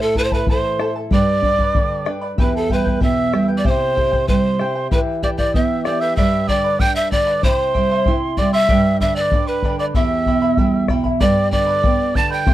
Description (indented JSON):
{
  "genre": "andean folk, Andean ensemble",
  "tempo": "95 BPM",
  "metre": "2/4",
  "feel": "straight",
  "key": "unclear",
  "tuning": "A4 = 440 Hz",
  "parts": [
    { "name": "breathy pan flute", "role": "melody", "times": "0.0-12.5 s", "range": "A4 to A5", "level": "-20 LUFS", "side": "left 1 dB", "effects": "none" },
    { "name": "mellow quena", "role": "second line", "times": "0.0-12.5 s", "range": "A5 to A6", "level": "-25 LUFS", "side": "right 8 dB", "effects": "slapback echo" },
    { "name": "charango", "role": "accompaniment", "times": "0.0-12.5 s", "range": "E4 to C6", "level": "-26 LUFS", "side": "left 4 dB", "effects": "none" },
    { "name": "nylon-string guitar", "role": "accompaniment", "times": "0.0-12.5 s", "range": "E2 to G4", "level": "-21 LUFS", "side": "right 3 dB", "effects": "none" },
    { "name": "bombo", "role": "percussion", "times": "0.2-12.5 s", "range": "none", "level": "-20 LUFS", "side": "left 1 dB", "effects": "none" }
  ],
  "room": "light reverb",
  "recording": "dry, close 1970s-style studio recording",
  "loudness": "-15 LUFS",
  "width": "side -14 dB against mid",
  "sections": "0.0-6.2 A section; 6.2-12.5 B section",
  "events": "none",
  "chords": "0.0 Am; 1.1 G; 2.4 Em; 3.7 C; 4.9 Em; 6.2 G; 7.4 C; 8.7 G; 10.0 Em; 11.2 G"
}